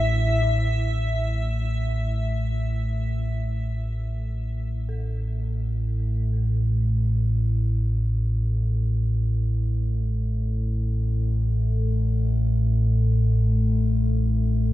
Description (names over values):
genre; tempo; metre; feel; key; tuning
dark ambient drone; free time; none; none; unclear; A4 = 440 Hz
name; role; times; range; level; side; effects
dark detuned synth bell; arpeggios; 0.0-14.7 s; D4 to A4; -43 LUFS; right 4 dB; chorus, tape echo, shimmer reverb
deep rumbling drone; drone; 0.0-14.7 s; A1 to A2; -22 LUFS; equal; built-in reverb, phaser, lush chorus
icy glass pad; texture; 0.0-0.9 s; E5; -30 LUFS; left 1 dB; chorus, built-in reverb, shimmer reverb
room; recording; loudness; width
light reverb, digital ambience; none; -22 LUFS; side -16 dB against mid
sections
0.9-14.7 A section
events
fade-in on synth bell 0.9-14.7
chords
0.0 A5